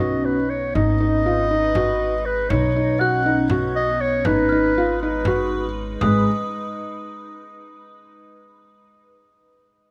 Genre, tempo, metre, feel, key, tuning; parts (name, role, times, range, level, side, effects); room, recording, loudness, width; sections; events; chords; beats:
contemporary instrumental, chamber music in an uneven meter; 239 BPM (eighths); 7/8; straight; G# dorian; A4 = 440 Hz
mellow clarinet; second line; 0.0-6.3 s; B4 to F#5; -25 LUFS; equal
evolving wavetable pad; sustained chords; 0.0-6.3 s; G#3 to B4; -30 LUFS; equal; chorus, built-in reverb, phaser
felt-muted upright piano; arpeggios; 0.0-6.3 s; G#3 to F#4; -25 LUFS; equal
upright bass; bass; 0.0-6.3 s; G#1 to B1; -28 LUFS; equal
glockenspiel with soft plastic mallets; texture; 0.0-0.2, 3.0-7.7 s; C#6 to F#6; -34 LUFS; equal
frame drum; percussion; 0.8-6.2 s; -29 LUFS; equal
moderate recital hall reverb, RT60 1.5 s; -20 LUFS; mono
0.0-6.0 A section; 6.0-7.8 B section
0.0 Badd9; 0.7 G#m; 2.5 Badd9; 4.3 G#m
0.24 0.50 | 0.75 1.00 1.25 1.50 1.75 2.00 2.25 | 2.50 2.75 3.01 3.26 3.51 3.76 4.01 | 4.26 4.51 4.76 5.02 5.27 5.52 5.77 | 6.02 6.27 6.52 6.78 7.03 7.28 7.53